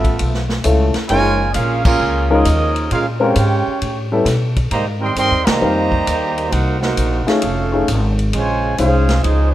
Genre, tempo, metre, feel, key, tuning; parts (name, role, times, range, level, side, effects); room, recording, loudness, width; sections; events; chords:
jazz, big band swing; 133 BPM; 4/4; swing 67% on 8ths; Bb minor; A4 = 439 Hz
warm trumpet section; melody; 0.0-9.5 s; Ab3 to C6; -20 LUFS; right 1 dB
warm trombone section; second line; 0.0-9.5 s; Db3 to G4; -22 LUFS; right 4 dB
upright bass; bass; 0.0-9.5 s; F1 to B2; -18 LUFS; equal
vintage drum kit; drums; 0.0-9.4 s; crash cymbal, hi-hat, kick drum, ride cymbal, snare drum; -23 LUFS; equal
warm upright piano; accompaniment; 0.6-9.1 s; G3 to C5; -18 LUFS; left 3 dB
light reverb, small room ambience; rough home demo mix; -14 LUFS; side -13 dB against mid
0.0-9.5 A section
band accent 1.8, 5.4
0.0 Db7alt; 1.1 Gbmaj13; 2.9 Bbm7; 3.8 A9; 4.7 Abmaj13; 6.5 Cm7b5; 7.4 F7alt; 8.3 Bbm11